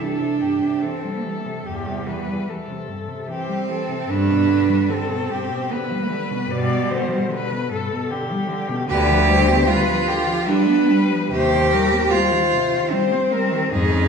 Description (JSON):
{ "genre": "classical, lyrical piece for cello ensemble", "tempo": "75 BPM", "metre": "3/4", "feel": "rubato", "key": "C minor from 8.9 s", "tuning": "A4 = 440 Hz", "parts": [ { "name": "rich cello", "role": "melody", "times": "0.0-14.1 s", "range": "G4 to D5", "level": "-25 LUFS", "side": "left 5 dB", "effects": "none" }, { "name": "rich cello", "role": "second line", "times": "0.0-14.1 s", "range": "G3 to G4", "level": "-21 LUFS", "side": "right 4 dB", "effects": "none" }, { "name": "warm cello", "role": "accompaniment", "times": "0.0-14.1 s", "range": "G2 to C4", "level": "-26 LUFS", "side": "left 2 dB", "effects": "none" }, { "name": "clear cello", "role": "bass", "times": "1.7-14.1 s", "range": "D2 to B2", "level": "-24 LUFS", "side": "equal", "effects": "none" } ], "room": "wet recital hall reverb, RT60 1.5 s", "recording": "heard from further back in the room", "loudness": "-18 LUFS", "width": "side -6 dB against mid", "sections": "0.0-14.1 A section", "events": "none", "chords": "0.0 C; 1.7 C/E; 4.1 G; 8.9 G7/D; 11.3 Cm/Eb" }